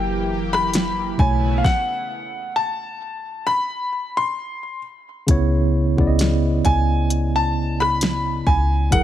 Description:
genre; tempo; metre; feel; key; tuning
contemporary R&B; 66 BPM; 4/4; swing 54% on 16ths; C# minor; A4 = 440 Hz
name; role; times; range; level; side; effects
warm concert grand piano; melody; 0.0-9.0 s; E#5 to B#5; -22 LUFS; left 1 dB; ping-pong delay
mellow tine electric piano; accompaniment; 0.0-9.0 s; B2 to D#5; -22 LUFS; right 2 dB; medium stereo tremolo
lush unison pad; sustained chords; 0.0-1.6 s; C#3 to G4; -30 LUFS; left 2 dB; chorus, sidechain pumping
warm 808-style bass; bass; 0.0-9.0 s; F#1 to C#2; -21 LUFS; equal; none
smooth R&B drum kit; drums; 0.5-9.0 s; hi-hat, kick drum, rim click, snare drum; -21 LUFS; equal; none
room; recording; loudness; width
light reverb; none; -18 LUFS; side -12 dB against mid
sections
0.0-5.3 A section; 5.3-9.0 A section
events
stop 1.6-5.3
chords
0.0 F#7b9; 1.2 B9sus4; 4.4 N.C.; 5.3 C#m7

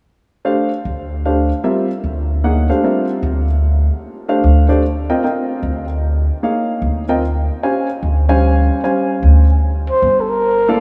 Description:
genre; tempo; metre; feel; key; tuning
modal jazz; 150 BPM; 3/4; swing 65% on 8ths; unclear; A4 = 440 Hz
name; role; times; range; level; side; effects
warm upright piano; accompaniment; 0.4-10.8 s; G3 to Ab5; -20 LUFS; equal; none
upright bass; bass; 0.9-10.8 s; G1 to D2; -17 LUFS; equal; none
breathy trumpet; melody; 9.9-10.8 s; A4 to C5; -15 LUFS; equal; none
room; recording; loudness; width
moderate cathedral reverb, RT60 7.2 s; in a vast, echoing space, small room ambience; -16 LUFS; mono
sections
0.5-10.0 A section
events
none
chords
0.5 Gm9; 5.2 Bbm9; 10.0 Gm9

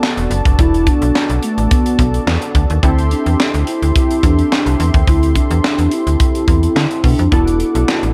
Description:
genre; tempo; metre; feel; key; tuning
early-eighties boogie funk; 107 BPM; 4/4; straight; unclear; A4 = 439 Hz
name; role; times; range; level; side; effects
hollow clarinet-like synth lead; melody; 0.0-8.1 s; A3 to E4; -20 LUFS; equal; chorus, slapback echo
funky polysynth comp; accompaniment; 0.0-8.1 s; B3 to A4; -26 LUFS; equal; chorus
brassy analog pad; sustained chords; 0.0-8.1 s; F#4 to D6; -29 LUFS; equal; chorus
tight funk drum kit; drums; 0.0-8.1 s; handclaps, hi-hat, kick drum, snare drum; -18 LUFS; equal; none
slap-like FM bass; bass; 0.2-8.1 s; E1 to D3; -18 LUFS; equal; none
mellow electric guitar; riff; 7.3-8.1 s; D4 to A4; -29 LUFS; equal; none
room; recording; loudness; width
small room ambience; none; -14 LUFS; mono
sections
0.0-8.1 A section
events
none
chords
0.0 E9sus4; 2.8 D9sus4; 7.3 E9sus4

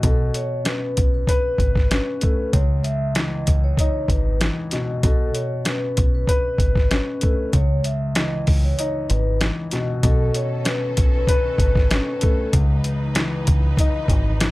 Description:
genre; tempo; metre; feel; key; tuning
hip hop, boom-bap hip-hop; 96 BPM; 4/4; swing 55% on 16ths; unclear; A4 = 440 Hz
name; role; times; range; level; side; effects
vibraphone with soft mallets; melody; 0.0-12.5 s; A4 to E5; -27 LUFS; equal; none
dark concert grand piano; accompaniment; 0.0-14.5 s; C#2 to B4; -24 LUFS; left 1 dB; cassette tape
deep dub fingered electric bass; bass; 0.0-14.5 s; G#1 to C#2; -21 LUFS; equal; none
boom bap sampler-style drum kit; drums; 0.0-14.5 s; hi-hat, kick drum, snare drum; -20 LUFS; equal; none
rich studio string section; sustained chords; 10.0-14.5 s; D#3 to B4; -34 LUFS; right 1 dB; none
room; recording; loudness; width
little or no reverb; none; -18 LUFS; side -19 dB against mid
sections
0.0-10.0 A section; 10.0-14.5 B section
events
break 8.8-10.0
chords
0.0 Bsus2; 2.5 C#m9; 5.0 Bsus2; 7.5 C#m9; 10.0 B9; 12.5 C#m9

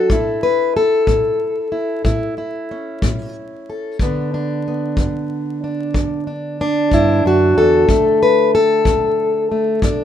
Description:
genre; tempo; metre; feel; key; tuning
acoustic country blues, solo or duo; 62 BPM (dotted quarters); 12/8; straight; D major; A4 = 440 Hz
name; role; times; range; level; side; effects
fingerpicked plugged-in steel-string acoustic guitar; melody; 0.0-10.0 s; D2 to B4; -15 LUFS; left 1 dB; none
kick drum; drums; 0.1-10.0 s; none; -19 LUFS; equal; none
room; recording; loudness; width
light reverb; minimal, uncompressed stereo recording, vinyl crackle; -14 LUFS; side -10 dB against mid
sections
0.0-10.0 A section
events
none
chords
0.1 A; 4.0 G; 7.9 D5

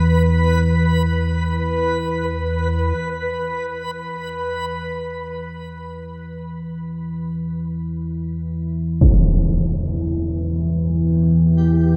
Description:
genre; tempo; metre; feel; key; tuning
dark ambient drone; free time; none; none; unclear; A4 = 440 Hz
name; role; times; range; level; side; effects
analog drone; drone; 0.0-12.0 s; E2 to E3; -22 LUFS; equal; chorus
backwards swelling texture; texture; 0.0-3.0, 11.5-12.0 s; G4 to B4; -27 LUFS; equal; built-in reverb, shimmer reverb
impact; percussion; 9.0-9.2 s; none; -21 LUFS; equal; low-pass filter on sfx
room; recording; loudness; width
moderate huge ambient reverb, RT60 8.3 s; none; -21 LUFS; mono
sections
0.0-3.0 A section; 3.0-12.0 B section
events
fade-in on synth drone 3.0-12.0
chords
0.0 E5

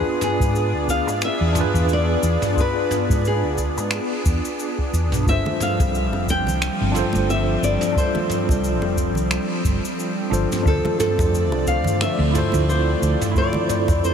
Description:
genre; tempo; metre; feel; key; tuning
sunset chillout; 89 BPM; 4/4; swing 57% on 16ths; unclear; A4 = 440 Hz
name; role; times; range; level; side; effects
flamenco guitar; melody; 0.0-14.1 s; G#4 to G5; -25 LUFS; left 1 dB; analog delay
tine electric piano; accompaniment; 0.0-14.1 s; D4 to C5; -25 LUFS; moving between left 3 dB and right 5 dB; medium stereo tremolo, auto-pan, tape echo
airy breathy pad; sustained chords; 0.0-14.1 s; D3 to D5; -26 LUFS; equal; chorus
soft brush drum kit; drums; 0.2-14.1 s; cabasa, finger snaps, toms; -28 LUFS; right 1 dB; none
hollow-body short-scale fingered electric bass; bass; 0.4-14.1 s; F1 to G#2; -22 LUFS; equal; none
electronic kick drum; drums; 0.4-14.0 s; none; -23 LUFS; equal; none
congas and bongos; percussion; 5.5-14.0 s; none; -33 LUFS; right 2 dB; none
room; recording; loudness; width
moderate huge ambient reverb, RT60 7.3 s; dreamy mix soaked in reverb; -18 LUFS; side -7 dB against mid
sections
0.0-14.1 A section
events
none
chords
0.0 E7b9; 5.3 G7sus4; 10.7 Dm9

